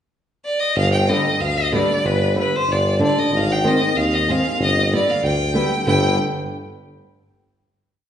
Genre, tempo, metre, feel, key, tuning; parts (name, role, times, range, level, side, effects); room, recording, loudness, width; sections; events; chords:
klezmer; 94 BPM; 2/4; straight; G phrygian dominant; A4 = 440 Hz
bright violin; melody; 0.4-6.2 s; B4 to G5; -20 LUFS; equal
warm tuba; bass; 0.8-6.2 s; G1 to Eb2; -21 LUFS; equal
flamenco guitar; accompaniment; 1.1-6.2 s; D3 to D4; -22 LUFS; equal
wet recital hall reverb, RT60 1.5 s; recorded in a church or concert hall, nothing above 10.6 kHz; -16 LUFS; side -9 dB against mid
0.0-0.8 pickup bar; 0.8-5.9 A section; 5.9-7.1 final chord
0.0 N.C.; 0.8 G; 3.3 Ab; 4.6 G